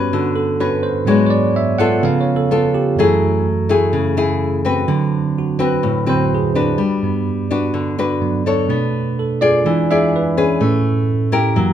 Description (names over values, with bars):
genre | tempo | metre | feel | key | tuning
bossa nova | 126 BPM | 4/4 | straight | unclear | A4 = 440 Hz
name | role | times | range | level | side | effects
bell-like tine electric piano | accompaniment | 0.0-11.7 s | F#2 to F#5 | -17 LUFS | right 4 dB | none
nylon-string guitar | accompaniment | 0.0-11.7 s | A2 to D5 | -17 LUFS | left 4 dB | none
room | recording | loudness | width
moderate large studio reverb, RT60 1.2 s | minimal, uncompressed stereo recording | -14 LUFS | side -10 dB against mid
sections
0.0-11.7 A section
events
tine electric piano solo 0.0-11.7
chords
0.0 Gmaj7#11; 1.1 G#m7b5; 2.0 C#aug7; 3.0 F#m9; 4.9 D6; 6.8 Gmaj7; 8.7 Bm9; 9.7 E7b9; 10.6 Amaj9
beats
0.12 0.60 | 1.07 1.55 2.03 2.50 | 2.98 3.46 3.93 4.41 | 4.89 5.36 5.84 6.32 | 6.79 7.27 7.75 8.22 | 8.70 9.18 9.65 10.13 | 10.61 11.09 11.56